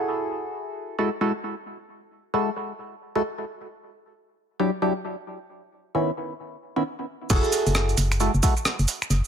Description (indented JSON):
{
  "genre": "UK garage, two-step garage",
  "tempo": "133 BPM",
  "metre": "4/4",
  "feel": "swing 62% on 16ths",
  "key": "F# dorian",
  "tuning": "A4 = 440 Hz",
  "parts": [
    { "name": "percussive organ stab", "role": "stabs", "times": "0.0-8.5 s", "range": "D#3 to A4", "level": "-26 LUFS", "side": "equal", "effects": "chorus, phaser, analog delay" },
    { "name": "organ-like FM bass", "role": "bass", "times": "7.3-9.2 s", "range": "F#1", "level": "-22 LUFS", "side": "equal", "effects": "none" },
    { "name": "breakbeat sampler-style drum kit", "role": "drums", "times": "7.3-9.3 s", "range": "cabasa, crash cymbal, finger snaps, hi-hat, rim click", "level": "-26 LUFS", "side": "right 2 dB", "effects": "tape echo" },
    { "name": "electronic kick drum", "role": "drums", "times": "7.3-8.5 s", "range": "none", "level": "-22 LUFS", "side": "equal", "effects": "none" }
  ],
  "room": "light reverb",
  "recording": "echo-heavy mix",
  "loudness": "-23 LUFS",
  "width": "side -8 dB against mid",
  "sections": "0.0-7.3 A section; 7.3-9.3 B section",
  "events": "break 6.4-7.3; drop 7.3-9.3",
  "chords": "0.1 F#m9; 3.7 Em9; 5.5 C#m9; 7.3 F#m9"
}